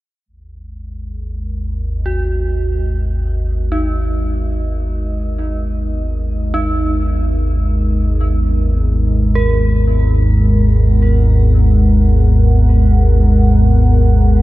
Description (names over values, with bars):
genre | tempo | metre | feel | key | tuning
dark ambient drone | free time | none | none | G# minor | A4 = 441 Hz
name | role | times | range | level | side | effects
dark analog pad | sustained chords | 0.9-14.4 s | G#3 to F#5 | -22 LUFS | left 1 dB | chorus
deep rumbling drone | drone | 0.6-14.4 s | G#1 to D#2 | -13 LUFS | equal | built-in reverb, wide subtle chorus
dark detuned synth bell | arpeggios | 2.1-14.4 s | D#4 to A#4 | -25 LUFS | right 3 dB | chorus, tremolo, tape echo, shimmer reverb
room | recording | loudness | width
wet cathedral reverb, RT60 6.3 s | dark, warm production | -12 LUFS | side -17 dB against mid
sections
0.3-14.4 A section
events
fade-in on analog synth pad 0.3-14.4; fade-in on synth bell 0.3-14.4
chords
0.3 G#madd9